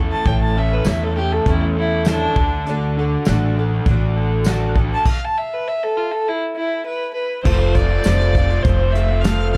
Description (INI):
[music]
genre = folk rock and heartland rock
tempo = 100 BPM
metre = 4/4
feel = straight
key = unclear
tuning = A4 = 440 Hz
[part]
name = picked twelve-string acoustic guitar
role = accompaniment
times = 0.0-9.6 s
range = A2 to A4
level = -27 LUFS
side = equal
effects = none
[part]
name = raw garage guitar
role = riff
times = 0.0-9.6 s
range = F2 to A4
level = -30 LUFS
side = equal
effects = overdrive
[part]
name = upright bass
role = bass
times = 0.0-9.6 s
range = F1 to E2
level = -21 LUFS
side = equal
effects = none
[part]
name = dark fiddle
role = melody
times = 0.1-9.6 s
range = D4 to A5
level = -24 LUFS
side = equal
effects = tape echo
[part]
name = soft brush drum kit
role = drums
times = 0.3-9.6 s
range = crash cymbal, hi-hat, kick drum, snare drum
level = -22 LUFS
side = equal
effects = none
[part]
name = tambourine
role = percussion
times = 0.8-9.4 s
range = none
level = -39 LUFS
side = equal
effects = none
[sound]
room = studio reverb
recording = dark, warm production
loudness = -18 LUFS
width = mono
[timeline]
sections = 0.0-7.5 A section; 7.5-9.6 B section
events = fiddle solo 0.0-7.5; stop 5.1-7.5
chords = 0.0 A; 2.4 D; 7.5 F